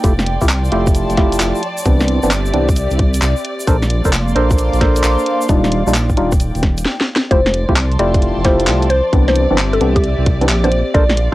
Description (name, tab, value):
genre	UK garage, two-step garage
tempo	132 BPM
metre	4/4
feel	swing 66% on 16ths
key	F major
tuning	A4 = 440 Hz
part	rich chamber violin section	sustained chords	0.0-11.3 s	D5	-29 LUFS	right 1 dB	vintage 12-bit sampler grit, sidechain pumping, cassette tape
part	percussive organ stab	stabs	0.0-11.3 s	E3 to C5	-18 LUFS	equal	chorus, cassette tape, analog delay
part	dark detuned saw bass	bass	0.0-11.3 s	Eb1 to C2	-17 LUFS	equal	none
part	electronic kick drum	drums	0.0-11.3 s	none	-14 LUFS	equal	overdrive, studio reverb, cassette tape
part	garage drum kit	drums	0.0-11.3 s	handclaps, hi-hat, snare drum	-19 LUFS	equal	overdrive, studio reverb, cassette tape
part	egg shaker	percussion	0.0-6.8 s	none	-32 LUFS	right 2 dB	none
part	airy breathy pad	texture	0.0-11.3 s	F3 to D6	-24 LUFS	equal	chorus, sidechain pumping, cassette tape
part	mallet-like synth pluck	melody	7.3-11.1 s	G4 to D5	-18 LUFS	equal	chorus, analog delay
room	light reverb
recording	home recording on cassette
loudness	-12 LUFS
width	side -17 dB against mid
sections	0.0-7.3 A section; 7.3-11.3 B section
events	drum fill 6.9-7.3; drop 7.3-11.3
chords	0.0 Fmaj9; 1.6 Cmaj9; 3.4 Bbmaj9; 5.5 Ebmaj9; 7.3 Fmaj9; 8.9 Cmaj9; 10.7 Bbmaj9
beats	| 0.04 0.49 0.95 1.40 | 1.85 2.31 2.76 3.22 | 3.67 4.13 4.58 5.04 | 5.49 5.95 6.40 6.86 | 7.31 7.76 8.22 8.67 | 9.13 9.58 10.04 10.49 | 10.95